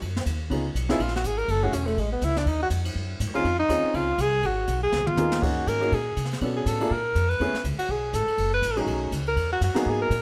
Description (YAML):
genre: jazz, small-group swing and bop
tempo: 244 BPM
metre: 4/4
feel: swing 58% on 8ths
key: unclear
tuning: A4 = 440 Hz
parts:
  - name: upright bass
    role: bass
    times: 0.0-10.2 s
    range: Fb1 to C3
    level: -30 LUFS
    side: equal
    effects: none
  - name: jazz brush drum kit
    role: drums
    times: 0.0-10.2 s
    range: crash cymbal, hi-hat, kick drum, ride cymbal, snare drum, toms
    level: -36 LUFS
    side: equal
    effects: none
  - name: warm baby grand piano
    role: accompaniment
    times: 0.5-10.1 s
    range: Gb3 to A4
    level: -30 LUFS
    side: equal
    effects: none
  - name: breathy tenor saxophone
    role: second line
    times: 0.9-10.2 s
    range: Ab3 to Cb5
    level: -28 LUFS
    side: equal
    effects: none
room: moderate large studio reverb, RT60 1.2 s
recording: none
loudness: -25 LUFS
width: mono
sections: 0.0-5.4 A section; 5.4-10.2 A section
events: tenor saxophone solo 0.0-10.2; drum fill 4.9-5.4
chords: 0.0 Ebm; 0.5 Db7; 1.5 Gbm7; 2.5 Ebsus2; 3.0 D7#11; 3.5 Dbmaj7; 4.4 Abm7; 4.9 Db13 (rootless); 5.4 Gb69; 6.4 Cbm7; 6.9 Bb5; 7.4 Amaj9; 8.4 Gbm; 8.9 Cb13; 9.4 Emaj9#11